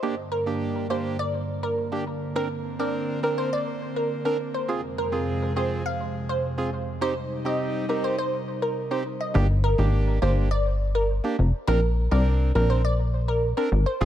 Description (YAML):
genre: dancehall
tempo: 103 BPM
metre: 4/4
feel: straight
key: unclear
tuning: A4 = 439 Hz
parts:
  - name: percussive organ stab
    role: accompaniment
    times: 0.0-14.1 s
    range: Bb3 to Bb4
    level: -30 LUFS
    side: right 3 dB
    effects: chorus
  - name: airy breathy pad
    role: sustained chords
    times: 0.0-9.3 s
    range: F2 to Eb4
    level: -31 LUFS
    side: equal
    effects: chorus
  - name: glassy wavetable pluck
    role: melody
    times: 0.3-14.0 s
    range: Bb4 to F5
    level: -28 LUFS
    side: equal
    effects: chorus, analog delay
  - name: plucky analog bass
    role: bass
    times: 9.3-14.1 s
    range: F1 to C2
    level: -21 LUFS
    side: equal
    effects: none
room: light reverb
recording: echo-heavy mix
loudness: -23 LUFS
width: side -11 dB against mid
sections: 0.0-9.4 A section; 9.4-14.1 B section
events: none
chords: 0.0 Gm; 2.4 Bbadd9; 4.7 Fm; 7.0 Cm; 9.4 Gm; 11.7 Bbadd9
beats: | 0.03 0.61 1.20 1.78 | 2.36 2.94 3.52 4.11 | 4.69 5.27 5.86 6.44 | 7.02 7.60 8.19 8.77 | 9.35 9.93 10.52 11.10 | 11.68 12.26 12.85 13.43 | 14.01